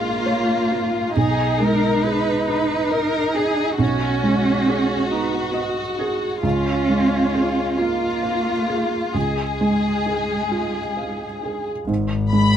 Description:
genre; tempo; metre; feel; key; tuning
neoclassical piano and strings; 45 BPM (dotted quarters); 6/8; rubato; G# dorian; A4 = 441 Hz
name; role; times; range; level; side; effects
warm studio violin section; melody; 0.0-12.6 s; E#4 to B5; -23 LUFS; left 3 dB; none
warm cello; second line; 0.0-11.4 s; G#3 to D#4; -23 LUFS; right 2 dB; none
felt-muted upright piano; accompaniment; 0.0-12.6 s; A#1 to E#5; -22 LUFS; right 2 dB; none
rich double bass; bass; 11.9-12.6 s; G#1; -20 LUFS; left 3 dB; none
room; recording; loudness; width
moderate studio reverb, RT60 0.8 s; none; -18 LUFS; side -9 dB against mid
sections
0.0-11.9 A section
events
none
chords
0.0 A#m7; 1.2 G#m/B; 6.4 C#; 11.9 G#m

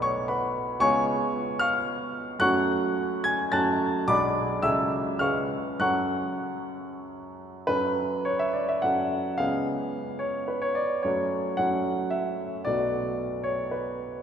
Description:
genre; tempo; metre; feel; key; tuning
classical, romantic character piece for solo piano; 94-116 BPM; 3/4; rubato; F# minor; A4 = 441 Hz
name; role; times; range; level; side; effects
warm grand piano; solo; 0.0-14.2 s; B1 to A6; -24 LUFS; equal; none
room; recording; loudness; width
wet church reverb, RT60 3.5 s; recorded in a church or concert hall; -24 LUFS; side -8 dB against mid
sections
0.0-7.7 A section; 7.7-14.2 A section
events
none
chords
0.0 Bm7; 0.8 C#7; 2.4 F#m; 4.1 G#dim/B; 4.6 F#m/C#; 5.2 C#7; 5.8 F#m; 9.4 C#7; 11.1 F#m; 12.7 Bm7

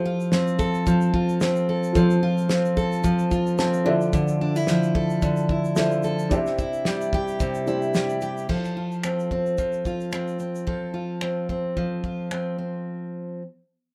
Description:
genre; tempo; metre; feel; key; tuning
acoustic pop; 110 BPM; 4/4; swing 55% on 16ths; F major; A4 = 440 Hz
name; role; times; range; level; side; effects
dark upright piano; accompaniment; 0.0-8.5 s; D4 to A5; -32 LUFS; equal; none
picked steel-string acoustic guitar; accompaniment; 0.0-13.4 s; C3 to A4; -25 LUFS; equal; none
cloth-damped thuddy drum kit; drums; 0.2-12.5 s; crash cymbal, finger snaps, kick drum, shaker, snare drum; -30 LUFS; equal; none
room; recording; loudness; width
light reverb; none; -24 LUFS; mono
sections
0.0-8.5 A section; 8.5-12.9 B section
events
upright piano fill 3.3-4.1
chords
0.0 F; 3.9 Dmadd9; 6.3 Cadd9; 8.5 F

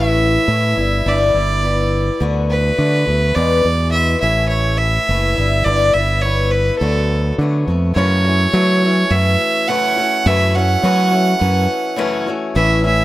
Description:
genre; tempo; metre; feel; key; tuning
folk rock and heartland rock; 104 BPM; 4/4; straight; unclear; A4 = 440 Hz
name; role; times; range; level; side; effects
clear fiddle; melody; 0.0-13.0 s; A4 to F#5; -18 LUFS; right 2 dB; none
picked swing-style acoustic guitar; accompaniment; 0.0-13.0 s; E2 to F#4; -20 LUFS; left 3 dB; none
modern bright fingered electric bass; bass; 0.0-13.0 s; F#1 to F#3; -16 LUFS; equal; none
room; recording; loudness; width
little or no reverb; none; -13 LUFS; side -16 dB against mid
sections
0.0-8.0 A section; 8.0-13.0 B section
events
none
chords
0.0 A; 0.8 G6; 2.2 D6; 3.4 Eadd9; 4.2 A; 5.4 G6; 6.8 D6; 8.0 F#m7

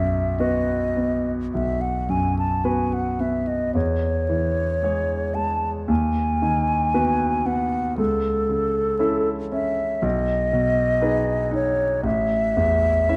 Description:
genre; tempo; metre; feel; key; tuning
classical, romantic duo for flute and grand piano; 53-60 BPM; 4/4; rubato; unclear; A4 = 439 Hz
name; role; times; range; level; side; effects
mellow hollow silver concert flute; melody; 0.0-13.2 s; A4 to A5; -25 LUFS; equal; none
clear concert grand piano; accompaniment; 0.0-13.2 s; A1 to E5; -25 LUFS; equal; none
room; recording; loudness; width
moderate concert hall reverb, RT60 2.1 s; close, detailed microphones, vinyl crackle; -22 LUFS; mono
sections
0.0-13.2 A section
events
none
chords
0.0 B; 3.7 C#m/E; 5.9 B/D#; 8.0 A/C#; 10.0 G#m/B; 12.1 A5

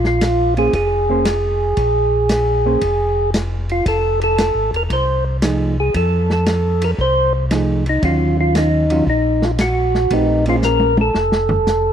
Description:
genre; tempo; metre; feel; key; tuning
soul jazz organ trio; 115 BPM; 4/4; swing 68% on 8ths; unclear; A4 = 438 Hz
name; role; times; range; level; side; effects
percussive tonewheel organ; melody; 0.0-11.9 s; Eb4 to C5; -17 LUFS; right 1 dB; slow rotary speaker, slapback echo
mellow tonewheel organ; bass; 0.0-11.9 s; E1 to F2; -19 LUFS; equal; chorus vibrato, slow rotary speaker
vintage drum kit; drums; 0.0-11.8 s; hi-hat, kick drum, ride cymbal, snare drum, toms; -24 LUFS; equal; none
hollow-body jazz guitar; accompaniment; 0.6-10.9 s; Eb3 to C5; -20 LUFS; right 2 dB; none
room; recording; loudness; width
small room ambience; dry, close 1970s-style studio recording; -14 LUFS; side -9 dB against mid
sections
0.0-11.9 A section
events
drum fill 10.6-11.7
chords
0.0 Bb7(no3); 3.9 F7#9; 8.0 Ebm9; 10.1 Bbm9; 11.2 F

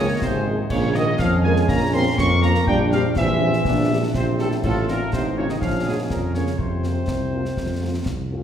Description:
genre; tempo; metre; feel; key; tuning
military-style march for wind band; 122 BPM; 2/4; straight; Bb minor; A4 = 441 Hz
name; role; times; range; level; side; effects
dark trumpet section; melody; 0.0-8.1 s; Ab4 to Db6; -26 LUFS; equal; none
warm euphonium; second line; 0.0-8.1 s; Ab2 to Db4; -26 LUFS; right 1 dB; none
dark French horn section; accompaniment; 0.0-8.4 s; F3 to Bb4; -30 LUFS; left 2 dB; none
dark trombone section; sustained chords; 0.0-8.3 s; Ab3 to F4; -28 LUFS; right 2 dB; none
warm tuba; bass; 0.0-8.4 s; Ab1 to F2; -22 LUFS; equal; none
concert snare drum, concert bass drum and clash cymbals; drums; 0.2-8.2 s; none; -28 LUFS; left 1 dB; none
room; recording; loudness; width
wet concert hall reverb, RT60 1.8 s; heard from further back in the room; -18 LUFS; side -9 dB against mid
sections
0.0-8.4 A section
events
none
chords
0.0 Dbmaj7; 0.7 Bbm; 2.7 C7/Bb; 4.6 F7/A; 5.6 Bbm; 6.6 Fsus4; 7.6 F

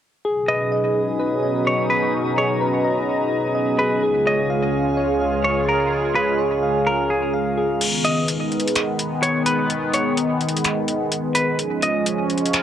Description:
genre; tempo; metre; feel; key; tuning
hip hop, atmospheric cloud-rap; 127 BPM; 4/4; half-time; B lydian; A4 = 442 Hz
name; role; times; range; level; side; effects
sweeping resonant pad; sustained chords; 0.2-12.6 s; C#2 to A#5; -21 LUFS; right 1 dB; chorus, cassette tape
soft electric-piano-like synth keys; arpeggios; 0.3-7.8 s; G#4 to E#5; -23 LUFS; left 2 dB; chorus, cassette tape, tape echo
drifting glass-harmonics texture; texture; 0.8-7.8 s; B3 to E#5; -31 LUFS; right 1 dB; chorus, built-in reverb, cassette tape
semi-hollow electric guitar; melody; 0.5-12.1 s; G#4 to D#5; -23 LUFS; equal; spring reverb, tape echo
booming analog drum machine; drums; 7.8-12.6 s; crash cymbal, finger snaps, hi-hat; -23 LUFS; left 1 dB; cassette tape
room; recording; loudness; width
moderate booth ambience, RT60 0.2 s; home recording on cassette; -18 LUFS; side -10 dB against mid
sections
0.2-7.8 A section; 7.8-12.6 B section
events
kick muted 7.8-12.6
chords
0.2 B6; 4.0 C#; 7.8 B6; 11.6 C#

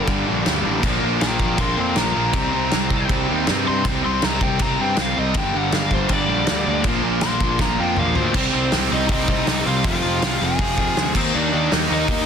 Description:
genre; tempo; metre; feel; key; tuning
punk rock; 160 BPM; 4/4; straight; C minor; A4 = 439 Hz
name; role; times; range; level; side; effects
biting lead guitar; melody; 0.0-12.3 s; C4 to C6; -25 LUFS; left 3 dB; overdrive, tape echo
distorted electric guitar; riff; 0.0-12.3 s; G2 to G4; -26 LUFS; left 13 dB; distortion
distorted electric guitar; riff; 0.0-12.3 s; F2 to Eb4; -24 LUFS; right 13 dB; overdrive
overdriven electric guitar; riff; 0.0-12.3 s; F2 to Eb4; -27 LUFS; equal; none
fuzz picked electric bass; bass; 0.1-12.2 s; F1 to G2; -25 LUFS; equal; overdrive
loose indie drum kit; drums; 0.1-12.2 s; crash cymbal, hi-hat, kick drum, snare drum, toms; -23 LUFS; equal; none
room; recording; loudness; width
light reverb; dense, heavily limited modern master; -17 LUFS; side -7 dB against mid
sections
0.0-8.3 A section; 8.3-12.3 B section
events
lead electric guitar solo 0.0-8.3; drum fill 7.6-8.3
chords
0.0 Gm; 0.8 Bb; 2.3 Cm; 5.3 Gm; 6.9 Bb; 8.3 Cm; 9.8 Fm; 11.1 Eb

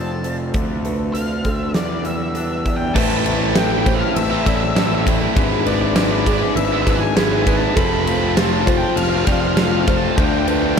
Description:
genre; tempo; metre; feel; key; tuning
post-rock; 100 BPM; 4/4; straight; A minor; A4 = 440 Hz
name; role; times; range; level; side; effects
octave-fuzz lead guitar; melody; 0.0-10.8 s; D5 to B5; -26 LUFS; left 2 dB; distortion, digital delay
soft additive organ-like pad; sustained chords; 0.0-10.8 s; C3 to B5; -31 LUFS; equal; none
felt-muted upright piano; arpeggios; 0.0-10.8 s; G#4 to D5; -27 LUFS; right 4 dB; digital delay
twangy electric guitar; arpeggios; 0.0-3.0 s; E2 to D4; -33 LUFS; left 3 dB; warbly pitch drift, digital delay
fuzz picked electric bass; bass; 0.0-10.8 s; F1 to E2; -22 LUFS; equal; overdrive
huge arena drum kit; drums; 0.2-10.8 s; crash cymbal, hi-hat, kick drum, ride cymbal, snare drum; -21 LUFS; equal; none
raw garage guitar; riff; 2.9-10.8 s; D3 to B4; -22 LUFS; left 13 dB; overdrive
tight distorted guitar; riff; 3.0-10.8 s; G#2 to F4; -23 LUFS; right 14 dB; distortion
room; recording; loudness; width
light reverb, studio ambience; none; -15 LUFS; side -6 dB against mid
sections
0.0-3.0 A section; 3.0-10.8 B section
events
none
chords
0.0 F; 0.5 Dm7; 1.8 Em7; 3.0 Am7; 5.4 E7/G#; 7.8 F; 10.2 Dm7

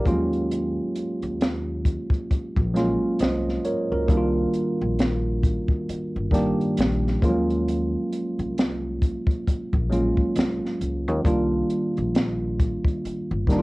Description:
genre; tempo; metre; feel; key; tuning
R&B, neo-soul; 67 BPM; 4/4; swing 60% on 16ths; unclear; A4 = 439 Hz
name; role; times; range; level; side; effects
tine electric piano; accompaniment; 0.0-13.6 s; Eb3 to Eb5; -24 LUFS; right 1 dB; cassette tape, plate reverb
upright bass; bass; 0.1-13.6 s; G1 to Eb2; -28 LUFS; left 1 dB; none
compact cocktail drum kit; drums; 0.1-13.6 s; hi-hat, kick drum, snare drum; -22 LUFS; equal; none
room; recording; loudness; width
light reverb; home recording on cassette; -21 LUFS; side -21 dB against mid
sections
0.0-13.6 A section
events
none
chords
0.1 Ebm11; 4.1 Cm11 (rootless); 7.2 Ebm11; 11.2 Cm11

